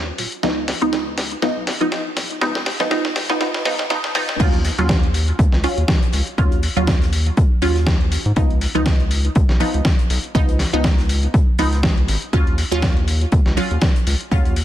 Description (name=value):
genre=deep house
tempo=121 BPM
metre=4/4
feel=swing 56% on 16ths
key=Eb minor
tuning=A4 = 442 Hz
part: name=filtered dub chord stab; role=stabs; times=0.0-14.5 s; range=F3 to F4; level=-22 LUFS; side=right 1 dB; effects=phaser, cassette tape, sidechain pumping, tape echo
part: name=round analog bass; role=bass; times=0.0-14.6 s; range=Eb1 to Ab2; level=-20 LUFS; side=equal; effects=tube saturation, sidechain pumping
part: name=dusty soul sampler-style drum kit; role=drums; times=0.2-14.6 s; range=crash cymbal, hi-hat, snare drum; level=-24 LUFS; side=equal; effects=high-pass filter on hats, high-pass filter on snare, high-pass filter on cymbals
part: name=damped 70s drum kit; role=drums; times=4.4-14.6 s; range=hi-hat, snare drum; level=-37 LUFS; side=left 3 dB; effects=high-pass filter on hats, high-pass filter on snare, high-pass filter on room
part: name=electronic kick drum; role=drums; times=4.4-14.4 s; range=none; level=-17 LUFS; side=equal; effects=overdrive
room=light reverb, small room ambience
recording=dense, heavily limited modern master, high-pass filter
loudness=-16 LUFS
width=side -12 dB against mid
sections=0.0-4.4 A section; 4.4-14.6 B section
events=build-up 0.0-4.4; drum fill 0.0-4.4; filter sweep on synth stab 0.0-4.4; drop 4.4-14.6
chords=0.4 Db9; 4.4 Ebm9; 8.4 Db9; 12.3 Ebm9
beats=| 0.43 0.93 1.42 1.92 | 2.42 2.91 3.41 3.90 | 4.40 4.89 5.39 5.89 | 6.38 6.88 7.37 7.87 | 8.37 8.86 9.36 9.85 | 10.35 10.85 11.34 11.84 | 12.33 12.83 13.32 13.82 | 14.32